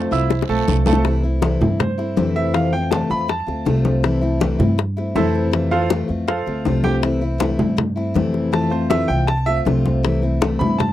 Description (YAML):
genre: latin, Cuban son and guajira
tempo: 160 BPM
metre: 4/4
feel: straight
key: C major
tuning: A4 = 440 Hz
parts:
  - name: Cuban tres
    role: melody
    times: 0.0-0.6 s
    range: C5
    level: -31 LUFS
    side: equal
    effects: none
  - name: picked steel-string acoustic guitar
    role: accompaniment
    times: 0.0-10.8 s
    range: C3 to F4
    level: -22 LUFS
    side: left 3 dB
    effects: none
  - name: bright baby grand piano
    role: arpeggios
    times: 0.0-10.9 s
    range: A3 to E6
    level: -23 LUFS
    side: right 3 dB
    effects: slapback echo
  - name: upright bass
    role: bass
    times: 0.0-10.9 s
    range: B1 to G2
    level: -21 LUFS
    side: right 1 dB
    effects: none
  - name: bongos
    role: percussion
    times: 0.1-10.9 s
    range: none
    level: -23 LUFS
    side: left 10 dB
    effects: none
  - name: congas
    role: percussion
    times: 0.1-10.9 s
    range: none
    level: -23 LUFS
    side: left 1 dB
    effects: none
  - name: guiro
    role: percussion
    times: 0.1-1.0 s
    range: none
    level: -35 LUFS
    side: right 21 dB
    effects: none
room: light reverb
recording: dry, close 1970s-style studio recording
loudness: -16 LUFS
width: side -13 dB against mid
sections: 0.0-1.0 A section; 1.0-10.9 B section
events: drum fill 0.3-1.0; grand piano solo 1.0-10.9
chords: 0.0 Fmaj7; 1.0 C6; 2.5 Fmaj7; 4.0 C6; 5.5 Fmaj7; 7.0 C6